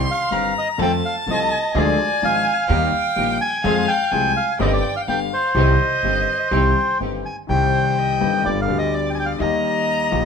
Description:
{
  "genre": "tango",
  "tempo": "126 BPM",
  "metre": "4/4",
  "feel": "rubato",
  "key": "C minor",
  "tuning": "A4 = 443 Hz",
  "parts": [
    { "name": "rich violin", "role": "second line", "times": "0.0-10.2 s", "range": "C5 to C6", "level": "-25 LUFS", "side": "left 2 dB", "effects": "none" },
    { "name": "warm concert grand piano", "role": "accompaniment", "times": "0.0-10.2 s", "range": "G1 to A4", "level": "-23 LUFS", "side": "left 5 dB", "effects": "none" },
    { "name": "rich chamber string section", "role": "stabs", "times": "0.0-7.2 s", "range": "Bb3 to A4", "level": "-30 LUFS", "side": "right 1 dB", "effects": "none" },
    { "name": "upright bass", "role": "bass", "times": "0.0-10.2 s", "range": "G1 to F2", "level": "-24 LUFS", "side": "right 3 dB", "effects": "none" },
    { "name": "bandoneon", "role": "melody", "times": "0.1-10.2 s", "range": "C5 to Ab5", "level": "-21 LUFS", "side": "equal", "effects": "none" }
  ],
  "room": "moderate studio reverb, RT60 0.9 s",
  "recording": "minimal, uncompressed stereo recording",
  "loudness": "-17 LUFS",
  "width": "side -6 dB against mid",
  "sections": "0.0-7.5 A section; 7.5-10.2 B section",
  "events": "none",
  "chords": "0.0 Cm; 0.8 F; 1.7 Ddim; 2.7 Eb; 3.6 Fm; 4.6 Cm/G; 5.1 G; 5.6 Cm; 8.5 G; 9.4 Eb"
}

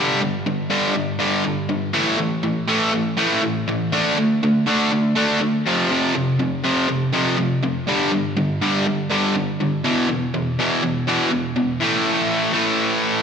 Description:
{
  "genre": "rock",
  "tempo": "122 BPM",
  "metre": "4/4",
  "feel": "straight",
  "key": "A minor",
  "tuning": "A4 = 442 Hz",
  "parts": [
    { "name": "cranked stack guitar", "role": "solo", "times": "0.0-13.2 s", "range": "E2 to D4", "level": "-18 LUFS", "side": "equal", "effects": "overdrive, slapback echo" }
  ],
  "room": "wet recital hall reverb, RT60 1.5 s, digital ambience",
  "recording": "big arena sound",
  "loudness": "-18 LUFS",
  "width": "side -6 dB against mid",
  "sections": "0.0-11.8 A section; 11.8-13.2 B section",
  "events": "none",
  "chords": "0.0 G5; 1.9 A5; 3.9 D5; 5.7 F5; 7.9 G5; 9.8 E5; 11.8 A5"
}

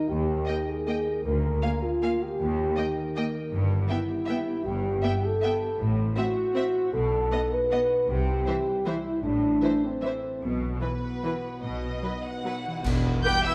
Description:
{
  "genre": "classical, orchestral ballroom waltz",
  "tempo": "141-172 BPM",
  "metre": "3/4",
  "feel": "rubato",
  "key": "E minor from 3.5 s",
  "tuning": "A4 = 439 Hz",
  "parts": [
    { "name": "dark French horn section", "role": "sustained chords", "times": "0.0-13.5 s", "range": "E3 to B4", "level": "-30 LUFS", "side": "equal", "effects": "none" },
    { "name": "concert harp", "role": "arpeggios", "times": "0.0-13.5 s", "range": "G2 to E5", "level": "-39 LUFS", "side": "equal", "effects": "none" },
    { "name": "rich symphonic cello section", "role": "bass", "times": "0.1-13.2 s", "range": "D2 to C3", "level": "-35 LUFS", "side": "equal", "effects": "none" },
    { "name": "rich symphonic double bass section", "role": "bass", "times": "0.1-13.2 s", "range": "E1 to Eb2", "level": "-35 LUFS", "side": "equal", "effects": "none" },
    { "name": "warm symphonic violin section", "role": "melody", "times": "0.5-13.5 s", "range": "B4 to G6", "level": "-38 LUFS", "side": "equal", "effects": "none" },
    { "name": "rich symphonic violin section", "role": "second line", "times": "0.5-13.5 s", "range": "B4 to G5", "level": "-38 LUFS", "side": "equal", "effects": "none" },
    { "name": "warm symphonic viola section", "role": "accompaniment", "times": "0.5-13.3 s", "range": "E3 to B4", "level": "-37 LUFS", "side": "equal", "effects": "none" },
    { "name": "cymbal swell, clash cymbals and concert bass drum", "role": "percussion", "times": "10.4-13.5 s", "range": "none", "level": "-35 LUFS", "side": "equal", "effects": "none" },
    { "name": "bright trombone section", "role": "sustained chords", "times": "12.8-13.5 s", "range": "B2 to B3", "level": "-38 LUFS", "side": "equal", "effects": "none" },
    { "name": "warm tuba", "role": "bass", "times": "12.8-13.2 s", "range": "E1", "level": "-36 LUFS", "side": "equal", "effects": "none" },
    { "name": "hollow concert flute", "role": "second line", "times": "13.2-13.5 s", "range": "E5 to G5", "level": "-35 LUFS", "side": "equal", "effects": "none" },
    { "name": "warm oboe", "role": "second line", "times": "13.3-13.5 s", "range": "E4 to G4", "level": "-33 LUFS", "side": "equal", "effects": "none" }
  ],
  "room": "moderate scoring stage reverb, RT60 1.7 s",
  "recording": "dark, warm production",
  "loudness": "-27 LUFS",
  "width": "mono",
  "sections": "0.0-12.8 A section",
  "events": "band accent 12.8-13.3",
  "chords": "0.0 Eb; 1.3 Bb7/D; 2.4 Eb; 3.5 Em/G; 5.8 F#m7b5/A; 6.9 B; 8.1 C; 9.2 Am; 10.4 Bsus4; 11.6 B; 12.8 Em"
}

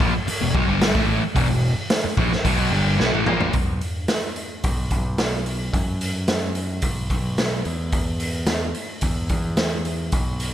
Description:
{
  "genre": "classic rock",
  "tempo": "109 BPM",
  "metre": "4/4",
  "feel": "straight",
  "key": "unclear",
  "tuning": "A4 = 440 Hz",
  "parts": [
    { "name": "sludgy distorted guitar", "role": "riff", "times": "0.0-3.5 s", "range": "E2 to B3", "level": "-21 LUFS", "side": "equal", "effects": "overdrive" },
    { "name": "growling picked electric bass", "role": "bass", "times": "0.0-10.5 s", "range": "E1 to F#2", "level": "-26 LUFS", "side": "equal", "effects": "overdrive" },
    { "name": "raw garage drum kit", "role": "drums", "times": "0.0-10.5 s", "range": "hi-hat, kick drum, snare drum, toms", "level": "-23 LUFS", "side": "equal", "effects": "none" }
  ],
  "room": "light reverb, small room ambience",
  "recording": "none",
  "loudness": "-20 LUFS",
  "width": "side -11 dB against mid",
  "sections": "0.0-3.5 A section; 3.5-10.5 B section",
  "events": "drum fill 3.0-3.5",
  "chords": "0.0 E5; 3.5 B5; 7.7 E5"
}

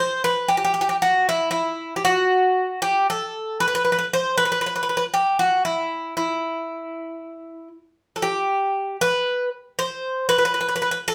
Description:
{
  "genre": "greek folk",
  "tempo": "116 BPM",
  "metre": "4/4",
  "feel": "straight",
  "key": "E minor",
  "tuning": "A4 = 440 Hz",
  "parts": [
    { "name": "Greek bouzouki", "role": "solo", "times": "0.0-11.1 s", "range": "E4 to C5", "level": "-22 LUFS", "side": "equal", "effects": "none" }
  ],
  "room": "wet studio reverb, RT60 0.6 s",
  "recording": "heard from further back in the room",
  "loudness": "-22 LUFS",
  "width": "mono",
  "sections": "0.0-8.2 A section; 8.2-11.1 B section",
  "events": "none",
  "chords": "none"
}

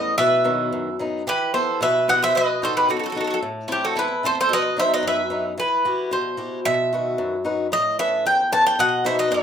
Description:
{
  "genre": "greek folk, Greek bouzouki band",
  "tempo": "112 BPM",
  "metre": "2/4",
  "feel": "straight",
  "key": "E harmonic minor",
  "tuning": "A4 = 440 Hz",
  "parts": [
    { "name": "Greek bouzouki", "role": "melody", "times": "0.0-9.4 s", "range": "G4 to A5", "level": "-20 LUFS", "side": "right 1 dB", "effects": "slapback echo" },
    { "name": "picked swing-style acoustic guitar", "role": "accompaniment", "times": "0.0-9.4 s", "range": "E2 to B4", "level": "-26 LUFS", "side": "left 3 dB", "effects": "none" },
    { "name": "bowl-back mandolin", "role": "second line", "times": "0.2-5.4, 8.8-9.4 s", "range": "E4 to D#5", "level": "-27 LUFS", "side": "right 2 dB", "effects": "none" }
  ],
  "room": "wet small room reverb, RT60 0.6 s",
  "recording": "rough home demo mix",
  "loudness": "-19 LUFS",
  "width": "side -8 dB against mid",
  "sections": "0.0-5.6 A section; 5.6-9.4 A section",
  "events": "none",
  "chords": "0.2 B; 1.3 Em; 2.4 B; 3.4 Am; 4.5 B; 5.6 Emadd9; 6.7 B; 7.7 Aadd9; 8.8 B"
}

